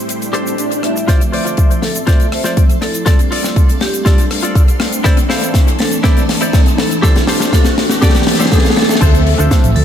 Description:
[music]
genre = nu-disco, nu disco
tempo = 121 BPM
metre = 4/4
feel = straight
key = D minor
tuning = A4 = 440 Hz
[part]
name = mellow synth brass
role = accompaniment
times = 0.0-9.8 s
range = E3 to E5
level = -20 LUFS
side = equal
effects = chorus, tape echo
[part]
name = string machine, full ensemble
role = sustained chords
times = 0.0-9.8 s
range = A3 to E6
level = -28 LUFS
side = right 1 dB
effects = ensemble chorus, sidechain pumping
[part]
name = direct-recorded clean electric guitar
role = riff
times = 0.1-9.7 s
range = D4 to F5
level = -22 LUFS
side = left 2 dB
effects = analog chorus, low-pass filter, tape echo
[part]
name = tight funk drum kit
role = drums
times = 0.1-9.8 s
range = crash cymbal, hi-hat, rim click, shaker, snare drum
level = -17 LUFS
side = left 2 dB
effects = studio reverb, tape echo
[part]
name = swell and riser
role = sound effects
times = 0.3-9.0 s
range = none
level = -24 LUFS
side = right 1 dB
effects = none
[part]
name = vibraphone with hard mallets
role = melody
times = 0.8-9.8 s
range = G4 to E5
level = -25 LUFS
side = right 1 dB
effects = tape echo
[part]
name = hollow-body short-scale fingered electric bass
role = bass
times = 1.1-9.8 s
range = F1 to Bb2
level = -19 LUFS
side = equal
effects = tube saturation, high-pass filter
[part]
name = electronic kick drum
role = drums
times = 1.1-9.6 s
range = none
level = -11 LUFS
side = equal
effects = studio reverb
[sound]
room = light reverb, small room ambience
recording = echo-heavy mix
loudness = -10 LUFS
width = side -9 dB against mid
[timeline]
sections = 0.0-1.1 A section; 1.1-9.0 B section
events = swell 0.3-1.1; build-up 1.1-9.0; drum fill 1.1-9.0; riser 1.1-9.0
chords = 0.0 Am7; 1.1 Dm7; 3.1 F6; 5.1 Bbmaj9#11; 7.0 Am7; 9.0 Dm7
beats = 0.09 0.59 | 1.08 1.58 2.08 2.57 | 3.07 3.56 4.06 4.55 | 5.05 5.55 6.04 6.54 | 7.03 7.53 8.03 8.52 | 9.02 9.51

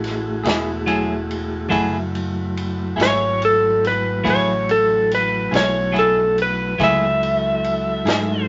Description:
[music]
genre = slow blues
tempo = 47 BPM (dotted quarters)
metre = 12/8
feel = straight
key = F# minor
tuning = A4 = 440 Hz
[part]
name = mellow tonewheel organ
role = sustained chords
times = 0.0-8.5 s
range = F#3 to A4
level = -28 LUFS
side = equal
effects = slow rotary speaker
[part]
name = fingered electric bass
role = bass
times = 0.0-8.5 s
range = E1 to G#2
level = -29 LUFS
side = equal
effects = none
[part]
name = vintage drum kit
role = drums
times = 0.0-8.3 s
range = kick drum, ride cymbal, snare drum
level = -30 LUFS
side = equal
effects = none
[part]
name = clean electric guitar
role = accompaniment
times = 0.4-8.3 s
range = F#3 to G#4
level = -24 LUFS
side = equal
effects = tremolo
[part]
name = electric slide guitar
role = melody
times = 3.0-8.5 s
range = A4 to E5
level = -20 LUFS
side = equal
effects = none
[sound]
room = moderate club reverb, RT60 0.6 s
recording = nothing above 7.6 kHz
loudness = -19 LUFS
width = mono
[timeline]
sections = 0.0-8.5 A section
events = electric slide guitar solo 0.0-8.5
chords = 0.0 F#m9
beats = 0.46 | 1.73 2.99 4.26 5.53 | 6.79 8.06

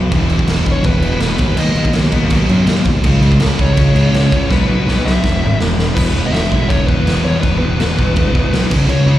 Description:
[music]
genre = punk rock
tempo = 164 BPM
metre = 4/4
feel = straight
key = E major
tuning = A4 = 440 Hz
[part]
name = sludgy distorted guitar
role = riff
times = 0.0-9.2 s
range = E2 to C#4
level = -21 LUFS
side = left 7 dB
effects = overdrive
[part]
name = fuzz picked electric bass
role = bass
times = 0.0-9.2 s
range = E1 to F#2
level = -16 LUFS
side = equal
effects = overdrive
[part]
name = sludgy distorted guitar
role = riff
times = 0.1-9.2 s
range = E2 to C#4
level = -20 LUFS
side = right 6 dB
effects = overdrive
[part]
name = raw garage drum kit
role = drums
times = 0.1-9.0 s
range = crash cymbal, kick drum, snare drum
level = -16 LUFS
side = equal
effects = none
[part]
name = dark smooth lead guitar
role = melody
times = 0.7-9.2 s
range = B4 to E5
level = -22 LUFS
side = left 2 dB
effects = overdrive, slapback echo, digital delay
[sound]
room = studio reverb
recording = live gig heard through the venue's PA, recital hall reverb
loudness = -12 LUFS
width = side -13 dB against mid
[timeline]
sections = 0.0-6.0 A section; 6.0-9.2 B section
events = drum fill 4.5-6.0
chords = 0.1 E5; 1.4 B/D#; 3.0 C#5; 4.5 B5; 5.2 E; 6.0 E5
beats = | 0.11 0.48 0.84 1.21 | 1.58 1.94 2.31 2.67 | 3.04 3.40 3.77 4.14 | 4.50 4.87 5.23 5.60 | 5.96 6.33 6.70 7.06 | 7.43 7.79 8.16 8.53 | 8.89

